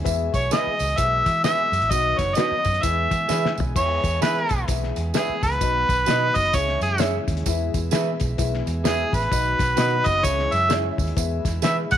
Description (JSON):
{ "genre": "uptempo 1960s-style soul", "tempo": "130 BPM", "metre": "4/4", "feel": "swing 61% on 8ths", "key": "E major", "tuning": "A4 = 440 Hz", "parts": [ { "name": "dark concert grand piano", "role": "accompaniment", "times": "0.0-11.9 s", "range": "B2 to E5", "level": "-30 LUFS", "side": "left 9 dB", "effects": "none" }, { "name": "pipe organ, principal chorus", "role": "sustained chords", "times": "0.0-12.0 s", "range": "B2 to G#4", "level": "-34 LUFS", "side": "equal", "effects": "none" }, { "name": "vintage muted fingered electric bass", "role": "bass", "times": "0.0-12.0 s", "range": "F#1 to E3", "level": "-26 LUFS", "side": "right 1 dB", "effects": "none" }, { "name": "cloth-damped thuddy drum kit", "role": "drums", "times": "0.1-12.0 s", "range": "crash cymbal, hi-hat, kick drum, snare drum, toms", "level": "-26 LUFS", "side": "left 3 dB", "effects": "none" }, { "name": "tambourine", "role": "percussion", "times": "0.1-12.0 s", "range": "none", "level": "-35 LUFS", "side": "right 16 dB", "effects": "none" }, { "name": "mellow harmonica", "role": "melody", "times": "0.3-12.0 s", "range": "G#4 to F#5", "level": "-22 LUFS", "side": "right 1 dB", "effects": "none" }, { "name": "electric guitar at the edge of break-up", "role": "stabs", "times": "0.5-11.8 s", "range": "F#4 to E5", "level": "-29 LUFS", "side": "right 13 dB", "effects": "lush chorus" } ], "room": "light reverb, small room ambience", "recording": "1960s-style stereo with parts hard left and right", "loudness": "-19 LUFS", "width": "side -10 dB against mid", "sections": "0.0-3.8 A section; 3.8-12.0 B section", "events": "drum fill 3.3-3.8; harmonica solo 3.8-12.0", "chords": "0.1 E; 1.9 B; 2.8 E; 5.6 B; 6.5 C#m; 7.5 E; 9.3 B; 10.2 C#m; 11.2 E" }